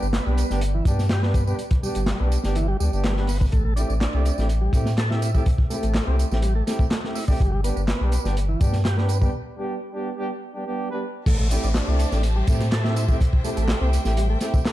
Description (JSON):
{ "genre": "breakbeat, breaks", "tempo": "124 BPM", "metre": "4/4", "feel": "straight", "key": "A minor", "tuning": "A4 = 439 Hz", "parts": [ { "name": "tonewheel organ", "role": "riff", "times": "0.0-14.7 s", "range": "E3 to A4", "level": "-31 LUFS", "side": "right 1 dB", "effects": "slow rotary speaker, dub echo" }, { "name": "dark brass ensemble", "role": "stabs", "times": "0.0-14.6 s", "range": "G3 to B4", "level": "-29 LUFS", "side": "right 1 dB", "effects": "vintage 12-bit sampler grit, dub echo" }, { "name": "saturated sub bass", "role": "bass", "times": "0.0-14.4 s", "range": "G1 to A2", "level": "-22 LUFS", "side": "equal", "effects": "none" }, { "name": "electronic tambourine and handclaps", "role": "drums", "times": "0.0-14.7 s", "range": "none", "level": "-36 LUFS", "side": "right 2 dB", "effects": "none" }, { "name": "crunchy breakbeat drum kit", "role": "drums", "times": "0.1-14.7 s", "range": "crash cymbal, hi-hat, kick drum, snare drum", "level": "-23 LUFS", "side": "equal", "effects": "none" }, { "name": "clear studio string section", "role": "sustained chords", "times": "11.3-14.7 s", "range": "G4 to A5", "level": "-35 LUFS", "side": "left 2 dB", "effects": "sidechain pumping" }, { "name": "downlifter", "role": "sound effects", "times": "11.3-14.7 s", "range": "none", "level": "-38 LUFS", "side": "left 1 dB", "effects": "none" } ], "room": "studio ambience", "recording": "dark, warm production", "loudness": "-20 LUFS", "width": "side -15 dB against mid", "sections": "0.0-11.3 A section; 11.3-14.7 B section", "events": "break 9.3-11.3; drop 11.3-14.7", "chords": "0.0 G; 3.5 Am7; 7.4 G; 11.3 Am7" }